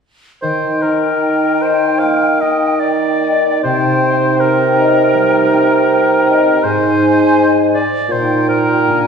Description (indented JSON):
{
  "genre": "classical",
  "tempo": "72-83 BPM",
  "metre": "4/4",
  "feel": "rubato",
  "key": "Eb major",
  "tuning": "A4 = 440 Hz",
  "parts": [
    { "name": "bright large flute ensemble", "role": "second line", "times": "0.4-9.1 s", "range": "G5 to Ab5", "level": "-21 LUFS", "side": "equal", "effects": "none" },
    { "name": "warm clarinet", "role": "second line", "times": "0.4-9.1 s", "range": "D4 to Eb4", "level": "-18 LUFS", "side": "right 2 dB", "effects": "none" },
    { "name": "warm oboe", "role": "second line", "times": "0.4-9.1 s", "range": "Bb4 to F5", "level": "-16 LUFS", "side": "equal", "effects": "none" },
    { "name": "mellow bassoon", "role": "accompaniment", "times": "0.4-9.1 s", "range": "Ab2 to Eb3", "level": "-16 LUFS", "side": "right 2 dB", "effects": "none" },
    { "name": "concert harp", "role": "arpeggios", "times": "0.4-9.1 s", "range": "Ab2 to Eb5", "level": "-19 LUFS", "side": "left 5 dB", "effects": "none" }
  ],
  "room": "wet scoring stage reverb, RT60 1.5 s",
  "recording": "heard from further back in the room",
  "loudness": "-11 LUFS",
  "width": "side -6 dB against mid",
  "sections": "0.4-9.1 A section",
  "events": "none",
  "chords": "0.4 Eb; 3.6 Cm7; 6.6 Ab; 8.1 Eb/Bb"
}